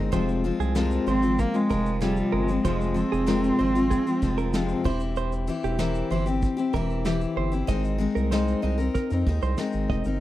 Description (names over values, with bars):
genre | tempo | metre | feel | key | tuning
acoustic pop | 95 BPM | 4/4 | straight | F minor | A4 = 440 Hz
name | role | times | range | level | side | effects
picked steel-string acoustic guitar | accompaniment | 0.0-10.2 s | F2 to Bb4 | -26 LUFS | left 4 dB | none
round analog bass | bass | 0.0-10.2 s | E1 to F2 | -27 LUFS | right 1 dB | none
direct-recorded clean electric guitar | arpeggios | 0.1-10.0 s | G4 to Eb5 | -34 LUFS | right 10 dB | spring reverb
vintage brush drum kit | drums | 0.1-10.2 s | kick drum, shaker, snare drum | -28 LUFS | right 1 dB | none
clear cello | melody | 1.1-4.8 s | G3 to C4 | -26 LUFS | right 2 dB | none
room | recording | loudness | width
little or no reverb | dry, close 1970s-style studio recording | -22 LUFS | side -14 dB against mid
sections
0.1-10.2 A section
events
none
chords
0.1 Fm; 4.9 C/E; 7.7 Abadd9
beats
| 0.13 0.76 1.39 2.02 | 2.65 3.28 3.91 4.54 | 5.17 5.80 6.43 7.06 | 7.69 8.32 8.95 9.58